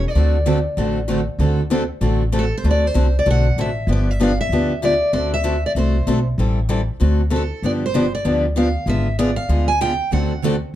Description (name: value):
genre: acoustic string swing (jazz manouche)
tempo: 193 BPM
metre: 4/4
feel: swing 60% on 8ths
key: D mixolydian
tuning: A4 = 440 Hz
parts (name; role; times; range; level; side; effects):
- picked steel-string acoustic guitar; melody; 0.0-10.4 s; A4 to G#5; -22 LUFS; equal; none
- upright bass; bass; 0.0-10.6 s; G1 to D2; -20 LUFS; equal; none
- picked steel-string acoustic guitar; accompaniment; 0.2-10.5 s; D3 to A4; -21 LUFS; left 2 dB; none
- picked steel-string acoustic guitar; accompaniment; 0.2-2.4, 10.1-10.5 s; D3 to A4; -24 LUFS; right 7 dB; none
room: moderate club reverb, RT60 0.6 s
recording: dark, warm production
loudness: -16 LUFS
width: side -13 dB against mid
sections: 0.0-2.6 A section; 2.6-10.8 A section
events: none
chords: 0.2 D7; 3.9 G7; 5.1 D7; 6.4 Am7; 7.0 D7; 7.6 G7; 8.9 G#dim7; 10.1 D7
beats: | 0.17 0.47 0.79 1.09 | 1.41 1.72 2.03 2.34 | 2.65 2.96 3.27 3.58 | 3.89 4.20 4.51 4.82 | 5.13 5.45 5.76 6.07 | 6.38 6.69 7.00 7.32 | 7.63 7.94 8.25 8.56 | 8.87 9.18 9.49 9.81 | 10.12 10.43